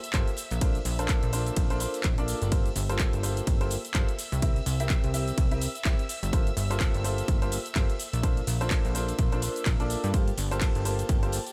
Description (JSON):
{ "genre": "piano house", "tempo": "126 BPM", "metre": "4/4", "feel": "swing 58% on 16ths", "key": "G dorian", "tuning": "A4 = 440 Hz", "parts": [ { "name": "dark studio violin section", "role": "sustained chords", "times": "0.0-11.5 s", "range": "G4 to E6", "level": "-45 LUFS", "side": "equal", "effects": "sidechain pumping" }, { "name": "punchy analog drum machine", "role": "drums", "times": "0.0-11.5 s", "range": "cabasa, handclaps, hi-hat, ride cymbal", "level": "-37 LUFS", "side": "equal", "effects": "none" }, { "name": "tambourine", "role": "percussion", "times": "0.0-11.5 s", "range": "none", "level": "-47 LUFS", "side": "equal", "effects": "none" }, { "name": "clear upright piano", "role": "riff", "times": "0.1-11.3 s", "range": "Bb3 to E5", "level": "-36 LUFS", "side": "equal", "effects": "sidechain pumping" }, { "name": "plucky analog bass", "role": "bass", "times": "0.1-11.4 s", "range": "G1 to G2", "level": "-32 LUFS", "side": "equal", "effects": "sidechain pumping" }, { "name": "electronic kick drum", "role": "drums", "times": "0.1-11.2 s", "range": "none", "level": "-28 LUFS", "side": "equal", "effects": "none" } ], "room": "little or no reverb", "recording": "none", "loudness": "-27 LUFS", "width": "mono", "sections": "0.0-11.5 A section", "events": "none", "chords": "0.4 Bbmaj9; 2.5 Gm11; 4.2 C7; 6.1 Gm11; 8.0 Bbmaj9; 10.1 Gm11" }